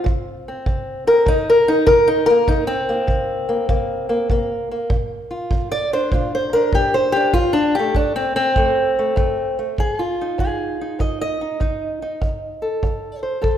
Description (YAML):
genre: acoustic country blues, solo or duo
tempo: 99 BPM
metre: 4/4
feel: swing 68% on 8ths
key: F mixolydian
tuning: A4 = 442 Hz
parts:
  - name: fingerpicked old ladder-braced acoustic guitar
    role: melody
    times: 0.0-13.6 s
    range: F2 to Eb5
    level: -18 LUFS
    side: equal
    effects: none
  - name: kick drum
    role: drums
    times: 0.1-13.6 s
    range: none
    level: -22 LUFS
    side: right 1 dB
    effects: none
room: moderate recital hall reverb, RT60 1.4 s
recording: recorded in a church or concert hall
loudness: -17 LUFS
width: side -10 dB against mid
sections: 0.0-9.8 A section; 9.8-13.6 B section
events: steel-string acoustic guitar solo 0.0-9.8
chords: 0.1 C7(no3); 4.9 Bb; 7.3 F; 9.8 F7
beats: | 0.06 0.66 1.27 1.88 | 2.48 3.09 3.69 4.30 | 4.91 5.51 6.12 6.73 | 7.34 7.95 8.55 9.16 | 9.77 10.38 11.00 11.61 | 12.22 12.83 13.44